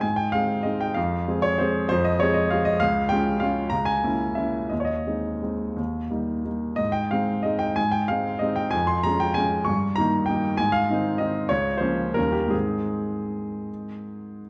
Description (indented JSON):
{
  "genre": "classical, piano waltz",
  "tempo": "151-208 BPM",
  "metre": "3/4",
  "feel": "rubato",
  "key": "Ab major",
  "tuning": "A4 = 442 Hz",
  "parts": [
    { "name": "warm grand piano", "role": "solo", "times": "0.0-14.5 s", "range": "Db2 to Db6", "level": "-24 LUFS", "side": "equal", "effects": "none" }
  ],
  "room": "moderate recital hall reverb, RT60 1.5 s",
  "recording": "worn, warbling old tape, cassette tape, warbly pitch drift, lossy compression artefacts",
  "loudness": "-24 LUFS",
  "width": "mono",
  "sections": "0.0-14.5 A section",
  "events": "none",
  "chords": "0.0 Ab; 1.0 Fm; 2.8 Db; 3.7 Bbm7b5/Db; 4.7 Ab/Eb; 5.8 Eb; 6.8 Ab; 8.7 Db/F; 9.7 Eb7/G; 10.6 Ab; 11.5 Bbm/Db; 12.2 Eb7; 12.5 Ab",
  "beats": "| 0.04 0.34 0.67 | 0.98 1.28 1.60 | 1.90 2.20 2.50 | 2.80 3.10 3.41 | 3.73 4.03 4.36 | 4.71 5.05 5.42 | 5.78 6.11 6.46 | 6.80 7.12 7.45 | 7.77 8.10 8.42 | 8.75 9.06 9.38 | 9.69 9.99 10.30 | 10.60 10.90 11.21 | 11.51 11.81 12.17 | 12.53 12.91 13.30 | 13.68 14.03 14.41"
}